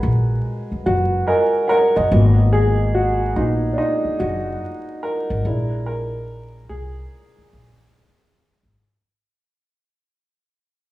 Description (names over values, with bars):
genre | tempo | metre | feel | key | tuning
hip hop | 72 BPM | 4/4 | swing 65% on 16ths | G# minor | A4 = 439 Hz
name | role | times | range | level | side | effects
dark upright piano | accompaniment | 0.0-8.8 s | G#3 to G#5 | -20 LUFS | right 1 dB | cassette tape, low-pass filter
upright bass | bass | 0.0-8.8 s | F#1 to B#1 | -19 LUFS | left 1 dB | none
room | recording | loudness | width
light reverb | rough home demo mix, vinyl crackle, studio reverb | -16 LUFS | side -16 dB against mid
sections
0.0-2.1 A section; 2.1-8.8 B section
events
fade-out 2.1-8.8; upright piano solo 2.1-8.8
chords
0.0 G#m9; 5.4 A#7#11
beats
0.44 1.28 | 2.11 2.94 3.78 4.61 | 5.44 6.28 7.11 7.94